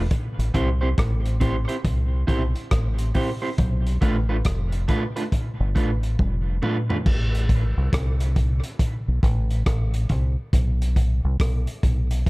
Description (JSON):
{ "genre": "dub reggae", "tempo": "69 BPM", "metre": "4/4", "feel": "swing 63% on 16ths", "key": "A minor", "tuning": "A4 = 440 Hz", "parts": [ { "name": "deep dub fingered electric bass", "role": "bass", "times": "0.0-12.2 s", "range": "F1 to C2", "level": "-22 LUFS", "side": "equal", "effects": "none" }, { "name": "crunchy breakbeat drum kit", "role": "drums", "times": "0.1-12.3 s", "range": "crash cymbal, hi-hat, kick drum, rim click, toms", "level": "-24 LUFS", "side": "equal", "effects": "none" }, { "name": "electric guitar at the edge of break-up", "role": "accompaniment", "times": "0.5-7.0 s", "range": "A3 to C5", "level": "-29 LUFS", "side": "right 2 dB", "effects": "dub echo" } ], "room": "small room ambience", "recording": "dark, warm production", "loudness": "-20 LUFS", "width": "side -22 dB against mid", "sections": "0.0-7.1 A section; 7.1-12.3 B section", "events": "drum fill 6.2-7.1", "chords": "0.1 Am7; 3.6 Bm7b5; 7.1 Amadd9" }